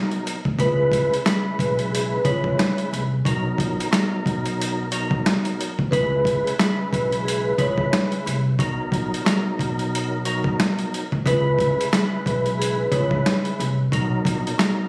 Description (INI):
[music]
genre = hip hop, boom-bap hip-hop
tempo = 90 BPM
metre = 4/4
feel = swing 58% on 16ths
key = C# dorian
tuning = A4 = 439 Hz
[part]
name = percussive tonewheel organ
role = accompaniment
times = 0.0-14.9 s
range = B2 to B4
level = -26 LUFS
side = equal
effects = overdrive, chorus vibrato, stopped rotary speaker, cassette tape, high-pass filter, low-pass filter
[part]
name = dusty soul sampler-style drum kit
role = drums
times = 0.1-14.8 s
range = hi-hat, kick drum, snare drum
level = -22 LUFS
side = equal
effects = none
[part]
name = upright bass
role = bass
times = 0.5-14.4 s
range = A#1 to D2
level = -25 LUFS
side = equal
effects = none
[part]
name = vibraphone with soft mallets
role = melody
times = 0.6-13.4 s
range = G#4 to C#5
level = -23 LUFS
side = equal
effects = high-pass filter, low-pass filter
[sound]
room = light reverb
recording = recorded on a phone in the room, studio reverb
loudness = -19 LUFS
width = side -28 dB against mid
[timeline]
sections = 0.0-14.9 A section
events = none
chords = 0.0 Bmaj7; 0.6 C#m7; 3.3 Bmaj7; 5.9 C#m7; 8.6 Bmaj7; 11.3 C#m7; 13.9 Bmaj7